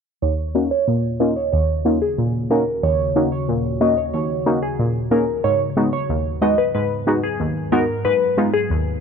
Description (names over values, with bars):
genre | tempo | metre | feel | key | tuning
dancehall | 92 BPM | 4/4 | straight | Eb minor | A4 = 441 Hz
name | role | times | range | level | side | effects
glassy wavetable pluck | melody | 0.2-8.7 s | Ab4 to Eb5 | -21 LUFS | equal | chorus, low-pass filter
synth brass stab | accompaniment | 0.2-9.0 s | Eb2 to Ab4 | -20 LUFS | equal | chorus, low-pass filter
deep dark ambient pad | sustained chords | 1.0-9.0 s | Eb2 to Cb5 | -29 LUFS | left 1 dB | chorus, built-in reverb, low-pass filter
room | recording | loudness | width
light reverb | dry, gritty hardware recording | -17 LUFS | side -6 dB against mid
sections
0.2-9.0 A section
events
filter sweep 0.2-9.0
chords
0.2 Ebm7; 5.4 Abm7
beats
| 0.22 0.88 1.53 2.18 | 2.83 3.48 4.14 4.79 | 5.44 6.09 6.74 7.40 | 8.05 8.70